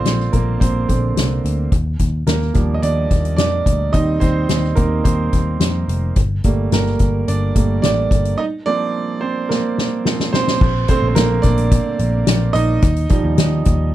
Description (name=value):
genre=piano-driven pop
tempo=108 BPM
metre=4/4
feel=straight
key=Bb major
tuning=A4 = 439 Hz
part: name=clear baby grand piano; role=accompaniment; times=0.0-13.9 s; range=D3 to Eb5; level=-20 LUFS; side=right 4 dB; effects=none
part: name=vintage muted picked electric bass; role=bass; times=0.1-13.9 s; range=F1 to F2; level=-18 LUFS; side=left 1 dB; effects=none
part: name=soft-mallet drum kit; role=drums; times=0.1-13.8 s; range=crash cymbal, hi-hat, kick drum, snare drum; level=-18 LUFS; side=left 1 dB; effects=none
room=little or no reverb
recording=none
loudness=-15 LUFS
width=side -14 dB against mid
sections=0.0-10.6 A section; 10.6-13.9 B section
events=grand piano solo 0.0-10.6, 10.6-13.9; break 8.4-10.6; drum fill 9.5-10.6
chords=0.0 Bbadd9; 1.7 Ebmaj7; 3.9 Cm/Eb; 6.2 Gmadd9; 8.4 Fsus4; 10.6 Bbmaj7; 12.8 Ebadd9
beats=0.05 0.61 1.16 | 1.72 2.27 2.83 3.39 | 3.94 4.50 5.05 5.61 | 6.16 6.72 7.28 7.83 | 8.39 8.94 9.50 10.05 | 10.61 11.16 11.72 12.28 | 12.83 13.39 13.94